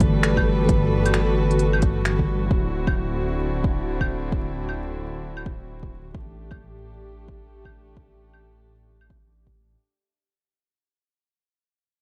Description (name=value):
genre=future garage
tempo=132 BPM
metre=4/4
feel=swing 62% on 16ths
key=unclear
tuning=A4 = 440 Hz
part: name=tine electric piano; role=accompaniment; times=0.0-2.5 s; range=D3 to A3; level=-29 LUFS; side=equal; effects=sidechain pumping, analog delay
part: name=warm chamber string section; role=sustained chords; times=0.0-9.7 s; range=D3 to B4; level=-29 LUFS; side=equal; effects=sidechain pumping
part: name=dark detuned saw bass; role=bass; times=0.0-9.8 s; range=D1 to A1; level=-29 LUFS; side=equal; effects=sidechain pumping
part: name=electronic kick drum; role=drums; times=0.0-9.5 s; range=none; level=-26 LUFS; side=equal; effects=overdrive
part: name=organic electronic drum kit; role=drums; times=0.0-9.1 s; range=claves, finger snaps, hi-hat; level=-29 LUFS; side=equal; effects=low-pass filter on hats, low-pass filter on perc, low-pass filter on snare, low-pass filter on room
room=light reverb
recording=vinyl crackle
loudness=-23 LUFS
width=mono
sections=0.0-9.8 A section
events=fade-out 0.0-9.8; filter sweep on drum 0.0-9.8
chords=0.0 Gmaj9; 2.5 D9; 6.1 A7sus4